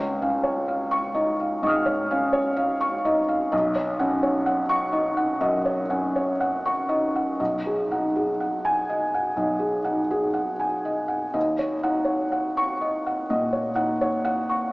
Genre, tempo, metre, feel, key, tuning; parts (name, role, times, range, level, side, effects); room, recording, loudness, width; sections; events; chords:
neoclassical minimalist piano; 62 BPM; 4/4; rubato; Eb minor; A4 = 441 Hz
felt-muted upright piano; solo; 0.0-14.7 s; B1 to F6; -22 LUFS; equal
wet church reverb, RT60 3.3 s; recorded in a church or concert hall, small speaker sound; -22 LUFS; side -22 dB against mid
0.0-14.7 A section
0.0 Dbadd9; 3.5 Badd9; 7.4 Abm7/Cb; 11.4 Ebm7